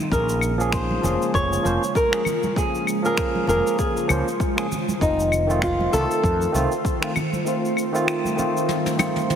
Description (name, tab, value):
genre	sunset chillout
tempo	98 BPM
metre	4/4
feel	swing 57% on 16ths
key	Bb minor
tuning	A4 = 440 Hz
part	ethereal airy pad	sustained chords	0.0-9.4 s	Db3 to C5	-28 LUFS	right 1 dB	ensemble chorus, built-in reverb
part	flamenco guitar	melody	0.1-9.3 s	Eb4 to Db5	-24 LUFS	equal	ping-pong delay
part	barky tine electric piano	accompaniment	0.1-9.4 s	Eb3 to C5	-25 LUFS	equal	auto-pan, ping-pong delay
part	mellow fretless electric bass	bass	0.1-6.7 s	F1 to F2	-25 LUFS	equal	none
part	electronic kick drum	drums	0.1-7.0 s	none	-26 LUFS	equal	overdrive
part	jazz brush drum kit	drums	0.1-9.4 s	claves, finger snaps, shaker, toms	-28 LUFS	left 1 dB	none
part	congas	percussion	0.9-9.1 s	none	-30 LUFS	right 3 dB	none
room	moderate lush hall reverb, RT60 2.6 s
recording	heavily compressed radio sound, multiband compression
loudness	-19 LUFS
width	side -8 dB against mid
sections	0.0-9.4 A section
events	filter sweep on tine electric piano 0.0-9.4; drum fill 8.7-9.4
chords	0.1 Bbm7; 5.0 F7